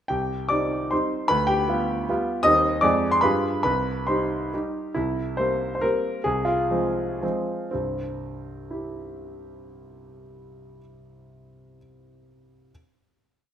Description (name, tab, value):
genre	classical, romantic triple-time dance for piano with dotted rhythms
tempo	110-171 BPM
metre	3/4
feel	rubato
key	unclear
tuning	A4 = 438 Hz
part	clear concert grand piano	solo	0.1-12.7 s	C2 to Eb6	-22 LUFS	equal	none
room	wet recital hall reverb, RT60 1.6 s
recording	none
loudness	-22 LUFS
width	side -10 dB against mid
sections	0.1-5.0 A section; 5.0-7.7 coda; 7.7-10.6 final chord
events	slowing down 4.3-7.7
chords	0.1 Cm; 1.3 G7/D; 2.4 Cm/Eb; 2.8 Dm7b5/F; 3.2 G7b9; 3.6 Cm; 5.0 C7; 6.2 Fm/C; 7.7 C